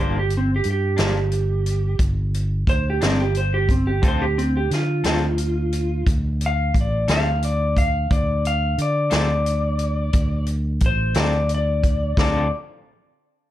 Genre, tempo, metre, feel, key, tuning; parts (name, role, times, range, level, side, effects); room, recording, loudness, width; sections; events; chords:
slow blues; 59 BPM (dotted quarters); 12/8; straight; D minor; A4 = 440 Hz
clean lap steel guitar; melody; 0.0-12.5 s; C4 to F5; -24 LUFS; equal
electric guitar at the edge of break-up; accompaniment; 0.0-12.5 s; G2 to A4; -27 LUFS; left 3 dB; tremolo
fingered electric bass; bass; 0.0-12.5 s; G1 to D3; -22 LUFS; equal
vintage drum kit; drums; 0.3-12.3 s; hi-hat, kick drum, snare drum; -22 LUFS; equal
light reverb; dark, warm production; -18 LUFS; side -13 dB against mid
0.0-12.2 A section; 12.2-13.5 B section
0.0 Gm7; 4.0 Dm7